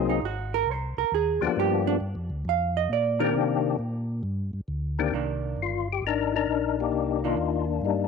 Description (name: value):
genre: jazz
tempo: 134 BPM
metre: 4/4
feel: swing 67% on 8ths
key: C minor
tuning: A4 = 438 Hz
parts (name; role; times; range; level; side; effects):
- percussive tonewheel organ; melody; 0.0-8.1 s; Eb3 to Bb4; -26 LUFS; left 11 dB; slow rotary speaker, chorus vibrato
- vintage hollow-body jazz guitar; accompaniment; 0.0-7.4 s; Eb3 to F5; -27 LUFS; right 10 dB; none
- mellow tonewheel organ; bass; 0.0-8.1 s; G1 to C3; -30 LUFS; equal; chorus vibrato, slow rotary speaker
room: wet spring reverb, RT60 1.3 s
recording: 1960s-style stereo with parts hard left and right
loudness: -24 LUFS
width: side -5 dB against mid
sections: 0.0-5.1 A section; 5.1-8.1 B section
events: hollow-body jazz guitar solo 0.0-5.1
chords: 0.0 Ab7; 1.6 G7#9; 3.3 Cm9